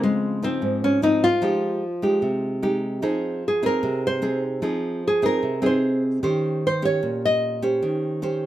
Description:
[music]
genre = bossa nova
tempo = 150 BPM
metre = 4/4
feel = straight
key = F minor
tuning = A4 = 441 Hz
[part]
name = nylon-string guitar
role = melody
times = 0.0-7.6 s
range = Ab3 to Eb5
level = -22 LUFS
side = left 1 dB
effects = none
[part]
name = nylon-string guitar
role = accompaniment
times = 0.0-8.5 s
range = Ab2 to C5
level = -23 LUFS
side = right 1 dB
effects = none
[sound]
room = moderate studio reverb, RT60 0.6 s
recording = minimal, uncompressed stereo recording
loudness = -20 LUFS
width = side -13 dB against mid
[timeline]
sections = 0.0-3.0 A section; 3.0-8.5 B section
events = nylon-string guitar solo 3.0-8.5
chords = 0.0 Dbmaj9; 1.4 Fm9; 3.0 Fm7; 6.2 Eb6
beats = 0.22 0.62 1.02 | 1.42 1.82 2.23 2.63 | 3.03 3.43 3.83 4.23 | 4.63 5.03 5.43 5.83 | 6.23 6.63 7.03 7.43 | 7.83 8.23

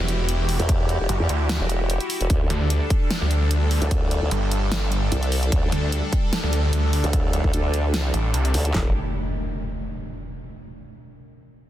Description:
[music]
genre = heavy wobble dubstep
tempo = 149 BPM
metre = 4/4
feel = swing 54% on 16ths, half-time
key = E minor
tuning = A4 = 441 Hz
[part]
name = supersaw pad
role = sustained chords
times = 0.0-8.9 s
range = F#3 to A4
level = -29 LUFS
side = equal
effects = phaser, sidechain pumping
[part]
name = snarling distorted saw bass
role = bass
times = 0.0-8.5 s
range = E1 to D2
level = -21 LUFS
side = equal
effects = distortion, overdrive
[part]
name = big-room dance drum kit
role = drums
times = 0.1-8.7 s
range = hi-hat, snare drum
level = -29 LUFS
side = equal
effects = none
[part]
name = formant-sweep wobble bass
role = bass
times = 0.6-8.9 s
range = E1 to E2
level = -22 LUFS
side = equal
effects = chorus, overdrive
[part]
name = big-room dance drum kit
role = drums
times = 0.7-8.8 s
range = handclaps, kick drum, snare drum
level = -22 LUFS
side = equal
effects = none
[part]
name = impact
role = sound effects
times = 8.7-10.4 s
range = none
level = -30 LUFS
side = equal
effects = none
[sound]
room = digital ambience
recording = dense, heavily limited modern master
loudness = -20 LUFS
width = side -13 dB against mid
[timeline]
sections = 0.0-8.7 A section; 8.7-10.4 B section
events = drop 0.0-8.7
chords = 0.0 Emadd9; 2.3 Dsus4; 8.7 Emadd9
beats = 0.29 | 0.69 1.09 1.50 1.90 | 2.30 2.70 3.10 3.51 | 3.91 4.31 4.72 5.12 | 5.52 5.92 6.33 6.73 | 7.13 7.54 7.94 8.34 | 8.74 9.15 9.55 9.95

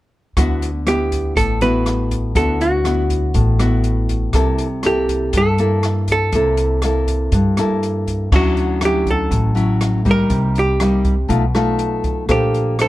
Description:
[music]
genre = bossa nova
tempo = 121 BPM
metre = 4/4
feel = straight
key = D major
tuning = A4 = 440 Hz
[part]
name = nylon-string guitar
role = accompaniment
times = 0.4-12.9 s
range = G2 to C5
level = -19 LUFS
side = left 1 dB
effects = none
[part]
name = upright bass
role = bass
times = 0.4-12.9 s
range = A1 to G2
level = -20 LUFS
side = equal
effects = none
[part]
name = open jazz drum kit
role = drums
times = 0.4-12.9 s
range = crash cymbal, hi-hat, kick drum, rim click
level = -24 LUFS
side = equal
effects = none
[part]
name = archtop guitar, miked and amplified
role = melody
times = 0.9-12.9 s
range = F#4 to B4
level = -20 LUFS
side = right 1 dB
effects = none
[sound]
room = little or no reverb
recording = dark, warm production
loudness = -15 LUFS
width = side -16 dB against mid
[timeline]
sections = 0.4-8.3 A section; 8.3-12.9 B section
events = none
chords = 0.4 D69; 4.3 C6; 8.3 Dmaj9; 10.3 Cm7; 11.3 B7#11; 12.3 Bbmaj9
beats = | 0.37 0.87 1.36 1.86 | 2.36 2.85 3.35 3.85 | 4.34 4.84 5.34 5.83 | 6.33 6.83 7.33 7.82 | 8.32 8.81 9.31 9.81 | 10.30 10.80 11.30 11.79 | 12.29 12.79

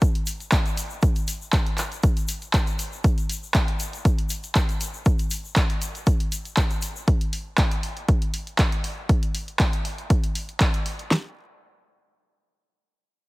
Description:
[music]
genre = house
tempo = 119 BPM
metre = 4/4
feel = swing 53% on 16ths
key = none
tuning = none
[part]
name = deep house drum kit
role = drums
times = 0.0-11.2 s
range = kick drum, snare drum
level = -21 LUFS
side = equal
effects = overdrive
[part]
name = punchy analog drum machine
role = drums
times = 0.0-11.1 s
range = handclaps, hi-hat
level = -28 LUFS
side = equal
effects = none
[part]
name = egg shaker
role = percussion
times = 0.0-7.1 s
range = none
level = -36 LUFS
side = left 4 dB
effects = none
[sound]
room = little or no reverb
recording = heavily compressed radio sound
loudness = -21 LUFS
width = side -22 dB against mid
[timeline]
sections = 0.0-11.1 A section; 11.1-13.3 B section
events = drop 0.0-11.1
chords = none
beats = 0.02 0.52 | 1.03 1.53 2.03 2.54 | 3.04 3.55 4.05 4.55 | 5.06 5.56 6.07 6.57 | 7.08 7.58 8.09 8.59 | 9.09 9.60 10.10 10.61 | 11.11

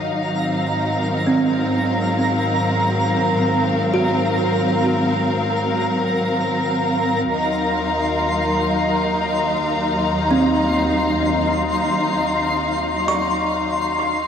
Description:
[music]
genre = ambient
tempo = free time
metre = none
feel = none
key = Eb dorian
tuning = A4 = 440 Hz
[part]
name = clear symphonic string section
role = sustained chords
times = 0.0-14.3 s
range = Gb3 to Bb5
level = -20 LUFS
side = left 1 dB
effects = none
[part]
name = warm studio double bass section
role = bass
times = 0.0-14.3 s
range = Eb2 to Ab2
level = -27 LUFS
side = equal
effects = none
[part]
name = analog drone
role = drone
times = 0.0-7.4 s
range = Eb3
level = -31 LUFS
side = equal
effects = chorus
[part]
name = twinkling granular texture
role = texture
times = 0.0-14.3 s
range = Bb5 to C6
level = -24 LUFS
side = equal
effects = built-in reverb
[part]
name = kalimba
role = arpeggios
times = 1.3-14.3 s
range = C4 to Db6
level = -24 LUFS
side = right 2 dB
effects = diffuse ambient delay
[sound]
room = wet cathedral reverb, RT60 6.1 s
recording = worn, warbling old tape, cassette tape, warbly pitch drift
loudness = -17 LUFS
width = side -8 dB against mid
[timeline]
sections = 0.0-7.3 A section; 7.3-14.3 B section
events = none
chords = 0.0 Ab13; 7.3 Ebm9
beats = free time

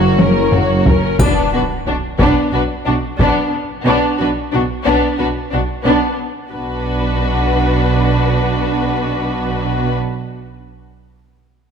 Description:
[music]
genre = cinematic, epic orchestral film score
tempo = 90 BPM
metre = 4/4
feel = straight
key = B harmonic minor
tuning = A4 = 440 Hz
[part]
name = dark symphonic violin section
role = melody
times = 0.0-9.9 s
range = D4 to C#5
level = -22 LUFS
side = left 6 dB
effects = none
[part]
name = rich symphonic violin section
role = second line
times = 0.0-9.9 s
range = B3 to A#4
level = -21 LUFS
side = left 5 dB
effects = none
[part]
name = warm studio viola section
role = accompaniment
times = 0.0-9.9 s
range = A#3 to D4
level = -20 LUFS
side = right 2 dB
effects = none
[part]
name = mellow French horn section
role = sustained chords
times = 0.0-0.9 s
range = A#3 to F#4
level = -25 LUFS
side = left 5 dB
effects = none
[part]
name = mellow trumpet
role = stabs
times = 0.0-0.8 s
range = C#5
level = -25 LUFS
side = right 2 dB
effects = none
[part]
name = clear studio double bass section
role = bass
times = 0.0-10.0 s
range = F#1 to B1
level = -21 LUFS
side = right 3 dB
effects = none
[part]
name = mellow tuba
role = bass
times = 0.0-1.0 s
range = F#1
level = -21 LUFS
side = right 2 dB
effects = none
[part]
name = warm symphonic cello section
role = bass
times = 0.0-9.9 s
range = F#2 to B2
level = -21 LUFS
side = right 3 dB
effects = none
[part]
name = taiko ensemble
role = drums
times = 0.2-3.8 s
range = none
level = -16 LUFS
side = left 1 dB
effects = none
[part]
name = triangle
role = percussion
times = 1.2-2.5 s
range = none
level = -32 LUFS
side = left 1 dB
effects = none
[part]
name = impact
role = sound effects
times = 1.2-3.9 s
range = none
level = -26 LUFS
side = equal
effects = none
[sound]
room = moderate scoring stage reverb, RT60 2.0 s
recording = none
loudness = -14 LUFS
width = side -7 dB against mid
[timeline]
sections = 0.0-1.2 A section; 1.2-6.5 B section; 6.5-9.2 C section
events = drum fill 0.2-1.2; impact 1.2-3.9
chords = 0.0 F#; 1.2 Bm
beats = 0.53 | 1.20 1.86 2.53 3.19 | 3.85 4.52 5.19 5.85 | 6.52 7.18 7.85 8.52

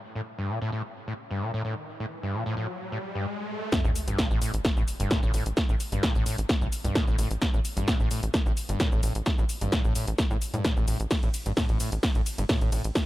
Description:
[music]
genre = driving peak-time techno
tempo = 130 BPM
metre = 4/4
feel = straight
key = unclear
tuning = A4 = 442 Hz
[part]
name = riser and sub drop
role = sound effects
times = 1.5-5.6 s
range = none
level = -37 LUFS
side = equal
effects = none
[part]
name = screaming distorted acid line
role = riff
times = 0.2-12.8 s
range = G2 to Bb2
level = -32 LUFS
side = equal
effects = distortion, wide subtle chorus, sidechain pumping, dub echo
[part]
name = electronic kick drum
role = drums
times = 3.7-13.1 s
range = none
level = -26 LUFS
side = equal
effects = overdrive
[part]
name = techno drum kit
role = drums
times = 3.7-13.1 s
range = hi-hat, ride cymbal, shaker, snare drum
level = -30 LUFS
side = equal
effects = overdrive, low-pass filter on snare, sidechain pumping on hats, low-pass filter on hats, sidechain pumping on perc, low-pass filter on perc, sidechain pumping on cymbals, low-pass filter on cymbals
[part]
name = tight sequencer bass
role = bass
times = 3.8-12.9 s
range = G1 to A2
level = -29 LUFS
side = equal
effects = sidechain pumping
[sound]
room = little or no reverb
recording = none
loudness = -25 LUFS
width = side -16 dB against mid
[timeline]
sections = 0.0-3.7 A section; 3.7-13.1 B section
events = riser 1.5-3.7; drop 3.7-13.1; impact 3.7-5.6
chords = none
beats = | 0.03 0.49 0.95 1.42 | 1.88 2.34 2.80 3.26 | 3.72 4.19 4.65 5.11 | 5.57 6.03 6.49 6.96 | 7.42 7.88 8.34 8.80 | 9.26 9.72 10.19 10.65 | 11.11 11.57 12.03 12.49 | 12.96

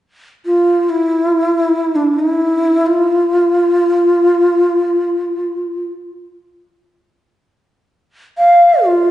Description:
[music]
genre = arabic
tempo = free time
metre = none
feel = none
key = unclear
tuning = A4 = 439 Hz
[part]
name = breathy mellow low ney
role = melody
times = 0.5-9.1 s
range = D4 to F5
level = -11 LUFS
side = equal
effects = none
[sound]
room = wet recital hall reverb, RT60 1.6 s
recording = heard from further back in the room, nothing above 10.7 kHz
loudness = -11 LUFS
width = side -13 dB against mid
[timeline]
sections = 0.0-9.1 A section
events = none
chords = none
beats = free time

